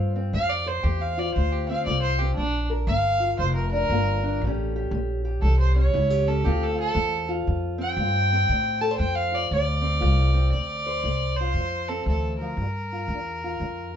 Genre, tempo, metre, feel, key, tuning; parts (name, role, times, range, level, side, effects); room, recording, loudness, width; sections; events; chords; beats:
acoustic country blues, solo or duo; 118 BPM; 4/4; swing 61% on 8ths; D minor; A4 = 440 Hz
fingerpicked steel-string acoustic guitar; accompaniment; 0.0-14.0 s; A2 to C5; -30 LUFS; left 2 dB
upright bass; bass; 0.0-14.0 s; F1 to A2; -24 LUFS; equal
dark fiddle; melody; 0.3-14.0 s; D4 to A5; -26 LUFS; right 2 dB
moderate studio reverb, RT60 0.6 s; band playing live in one room, nothing above 7.9 kHz; -22 LUFS; side -9 dB against mid
0.0-10.5 A section; 10.5-14.0 B section
fiddle solo 0.0-10.5
0.0 Dm7; 2.4 Bb; 4.4 A7#9; 6.5 Dm7; 12.6 Gm7
| 0.34 0.85 1.36 1.87 | 2.38 2.89 3.40 3.91 | 4.42 4.92 5.43 5.94 | 6.45 6.96 7.47 7.98 | 8.49 9.00 9.51 10.02 | 10.54 11.05 11.56 12.07 | 12.59 13.10 13.61